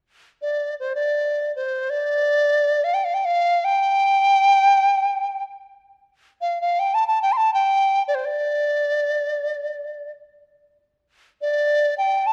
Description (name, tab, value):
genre	chinese traditional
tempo	free time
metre	none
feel	none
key	D yu mode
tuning	A4 = 440 Hz
part	large dizi	melody	0.4-12.3 s	C5 to C6	-21 LUFS	equal	none
room	moderate recital hall reverb, RT60 1.7 s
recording	none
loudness	-21 LUFS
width	mono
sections	0.0-11.1 A section; 11.1-12.3 B section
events	none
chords	none